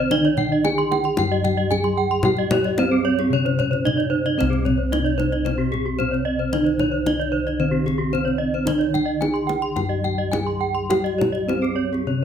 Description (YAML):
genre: Balinese gamelan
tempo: 112 BPM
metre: 4/4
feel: straight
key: C pelog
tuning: A4 = 437 Hz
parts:
  - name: gamelan-type bronze metallophone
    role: melody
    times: 0.0-12.2 s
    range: C4 to Ab4-20c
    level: -23 LUFS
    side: right 2 dB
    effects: none
  - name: gamelan-type bronze metallophone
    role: accompaniment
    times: 0.0-12.2 s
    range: C3 to G3-30c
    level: -30 LUFS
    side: left 4 dB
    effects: none
  - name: gamelan-type bronze metallophone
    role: arpeggios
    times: 0.0-12.2 s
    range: Ab4-20c to C6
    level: -27 LUFS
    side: left 4 dB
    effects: none
  - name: gamelan-type bossed gongs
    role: bass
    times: 0.0-12.2 s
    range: C2 to G4-30c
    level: -25 LUFS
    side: left 1 dB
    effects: none
  - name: kendang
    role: percussion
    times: 0.1-12.0 s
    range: none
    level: -29 LUFS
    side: left 2 dB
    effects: none
  - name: gamelan-type bronze metallophone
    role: arpeggios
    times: 0.2-11.9 s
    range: G4-30c to C6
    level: -27 LUFS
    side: right 6 dB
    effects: none
room: moderate recital hall reverb, RT60 1.4 s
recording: close, detailed microphones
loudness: -19 LUFS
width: side -8 dB against mid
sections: 0.0-12.2 A section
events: none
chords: none